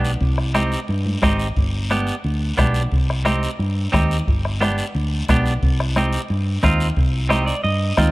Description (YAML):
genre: latin, cumbia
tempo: 178 BPM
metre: 4/4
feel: straight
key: C harmonic minor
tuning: A4 = 439 Hz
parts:
  - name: clean electric guitar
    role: accompaniment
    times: 0.0-8.1 s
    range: B3 to G5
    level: -24 LUFS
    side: right 2 dB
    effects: none
  - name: hollow-body short-scale fingered electric bass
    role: bass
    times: 0.0-8.1 s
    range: G1 to G2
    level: -20 LUFS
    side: equal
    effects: none
  - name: guiro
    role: percussion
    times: 0.0-8.1 s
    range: none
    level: -32 LUFS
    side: left 3 dB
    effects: none
  - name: bombo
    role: percussion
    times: 0.2-8.1 s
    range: none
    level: -22 LUFS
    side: equal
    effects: none
  - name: congas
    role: percussion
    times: 0.6-8.1 s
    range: none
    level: -27 LUFS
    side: equal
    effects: none
room: light reverb, studio ambience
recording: rough home demo mix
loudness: -17 LUFS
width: side -20 dB against mid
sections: 0.0-8.1 A section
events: clean electric guitar fill 7.3-8.1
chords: 0.2 Cm; 1.6 G; 2.9 Cm; 4.3 G; 5.6 Cm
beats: | 0.21 0.55 0.89 1.23 | 1.57 1.91 2.24 2.58 | 2.92 3.26 3.59 3.93 | 4.27 4.61 4.95 5.28 | 5.62 5.96 6.30 6.63 | 6.97 7.31 7.65 7.98